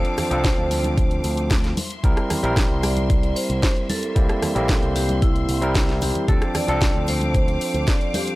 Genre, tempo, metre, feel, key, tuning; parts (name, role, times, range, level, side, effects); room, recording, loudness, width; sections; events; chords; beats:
nu-disco, nu disco; 113 BPM; 4/4; straight; D minor; A4 = 440 Hz
vibraphone with hard mallets; melody; 0.0-8.4 s; E4 to D5; -28 LUFS; right 1 dB; analog delay
overdriven tine electric piano; accompaniment; 0.0-8.4 s; F3 to Bb4; -24 LUFS; equal; sidechain pumping
clear studio string section; sustained chords; 0.0-8.4 s; Bb3 to D6; -34 LUFS; left 2 dB; sidechain pumping
house drum kit; drums; 0.0-8.4 s; hi-hat, rim click, snare drum; -27 LUFS; equal; overdrive
cabasa and congas; percussion; 0.2-8.4 s; -31 LUFS; equal
picked electric bass with an envelope filter; bass; 0.3-7.8 s; Bb1 to D2; -25 LUFS; equal
electronic kick drum; drums; 0.4-8.0 s; -20 LUFS; equal
studio ambience; dry, gritty hardware recording; -18 LUFS; side -19 dB against mid
0.0-8.4 A section
0.0 Dm7; 1.8 C7; 6.3 Dm7
0.45 0.98 1.51 | 2.04 2.57 3.10 3.63 | 4.16 4.69 5.22 5.75 | 6.29 6.82 7.35 7.88